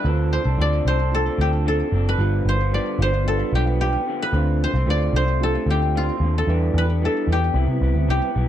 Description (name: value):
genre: indie pop, bedroom pop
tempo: 112 BPM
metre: 4/4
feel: straight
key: D dorian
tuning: A4 = 440 Hz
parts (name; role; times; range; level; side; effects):
- koto; melody; 0.0-8.5 s; F4 to D5; -24 LUFS; left 1 dB; wide subtle chorus, slapback echo, plate reverb
- electric guitar through a small old amp; accompaniment; 0.0-8.5 s; G2 to A4; -28 LUFS; left 4 dB; wide subtle chorus, warbly pitch drift, plate reverb
- mellow tonewheel organ; accompaniment; 0.0-8.3 s; G3 to C5; -29 LUFS; right 5 dB; slow rotary speaker, plate reverb
- vintage muted picked electric bass; bass; 0.0-8.5 s; F#1 to C3; -20 LUFS; equal; none
room: light reverb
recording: dark, warm production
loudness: -18 LUFS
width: side -11 dB against mid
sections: 0.0-8.5 A section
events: none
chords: 0.0 Dm7; 2.2 G7; 4.3 Dm7; 6.5 Em7; 7.5 Cmaj7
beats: | 0.05 0.58 1.12 1.65 | 2.19 2.72 3.26 3.79 | 4.33 4.87 5.40 5.94 | 6.47 7.01 7.54 8.08